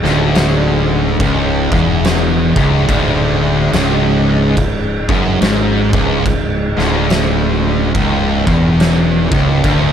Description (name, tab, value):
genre	stoner and doom metal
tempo	71 BPM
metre	4/4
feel	swing 62% on 8ths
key	C# dorian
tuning	A4 = 440 Hz
part	mellow tonewheel organ	sustained chords	0.0-9.9 s	C#3 to D#4	-24 LUFS	left 1 dB	slow rotary speaker
part	fuzz guitar	riff	0.0-9.9 s	C#2 to G#2	-18 LUFS	equal	distortion
part	thick fuzz guitar	riff	0.0-9.9 s	C#2 to G#2	-18 LUFS	left 8 dB	distortion
part	thick fuzz guitar	riff	0.0-9.9 s	C#2 to G#2	-18 LUFS	right 6 dB	distortion
part	growling fingered electric bass	bass	0.0-9.9 s	C#1 to G#1	-20 LUFS	equal	overdrive
part	oversized low-tuned drum kit	drums	0.0-9.9 s	crash cymbal, kick drum, snare drum	-18 LUFS	equal	none
room	light reverb, studio reverb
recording	none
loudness	-11 LUFS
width	side -8 dB against mid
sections	0.0-9.9 A section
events	none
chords	0.0 C#m